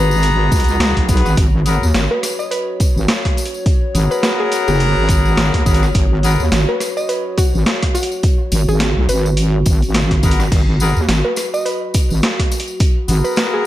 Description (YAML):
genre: glitch hop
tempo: 105 BPM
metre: 4/4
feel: swing 57% on 16ths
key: G# minor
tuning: A4 = 440 Hz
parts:
  - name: woody wave-folded pluck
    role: melody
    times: 0.0-13.7 s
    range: F#4 to D#5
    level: -22 LUFS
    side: left 1 dB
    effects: chorus, dub echo
  - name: dark analog pad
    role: sustained chords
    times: 0.0-13.7 s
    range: F#4 to C#5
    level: -25 LUFS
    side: right 1 dB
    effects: chorus, sidechain pumping
  - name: bright horn section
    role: stabs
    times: 0.0-6.4, 10.2-13.7 s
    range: B3 to A#5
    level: -21 LUFS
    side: left 2 dB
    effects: sidechain pumping, dub echo
  - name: wobble bass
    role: bass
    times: 0.0-13.2 s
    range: F#1 to D#2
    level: -15 LUFS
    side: equal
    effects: chorus, tube saturation
  - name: tambourine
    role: percussion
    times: 0.1-13.5 s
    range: none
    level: -29 LUFS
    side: left 2 dB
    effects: none
  - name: boom bap sampler-style drum kit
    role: drums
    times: 0.2-13.5 s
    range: crash cymbal, hi-hat, rim click, snare drum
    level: -21 LUFS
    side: equal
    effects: none
  - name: electronic kick drum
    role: drums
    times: 0.5-12.9 s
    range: none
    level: -15 LUFS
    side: equal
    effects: none
room: digital ambience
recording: none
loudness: -13 LUFS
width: side -14 dB against mid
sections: 0.0-13.7 A section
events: none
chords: 0.0 G#m9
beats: 0.23 0.80 | 1.38 1.95 2.52 3.09 | 3.66 4.23 4.80 5.38 | 5.95 6.52 7.09 7.66 | 8.23 8.80 9.38 9.95 | 10.52 11.09 11.66 12.23 | 12.80 13.38